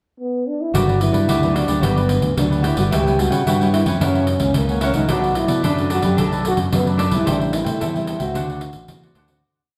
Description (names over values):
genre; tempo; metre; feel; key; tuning
samba and choro; 110 BPM; 4/4; straight; G major; A4 = 441 Hz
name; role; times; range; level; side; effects
breathy trombone; melody; 0.2-9.2 s; A#3 to A4; -24 LUFS; equal; none
cavaquinho; accompaniment; 0.7-9.4 s; D4 to G5; -28 LUFS; equal; none
nylon-string guitar; accompaniment; 0.7-9.4 s; F#2 to F#4; -27 LUFS; equal; none
growling fingered electric bass; bass; 0.7-9.4 s; G1 to C#3; -23 LUFS; equal; overdrive
pandeiro; percussion; 0.7-9.4 s; none; -26 LUFS; equal; none
room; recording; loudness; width
wet large studio reverb, RT60 1.2 s; heard from further back in the room; -19 LUFS; mono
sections
0.0-0.7 pickup bar; 0.7-9.4 A section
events
fade-out 7.3-9.4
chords
0.0 N.C.; 0.7 Gmaj7; 2.9 C#m7b5; 4.0 F#7; 5.1 Bm7; 7.3 Am7; 8.4 D7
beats
0.20 | 0.74 1.28 1.83 2.37 | 2.92 3.46 4.01 4.55 | 5.10 5.64 6.18 6.73 | 7.27 7.81 8.36 8.90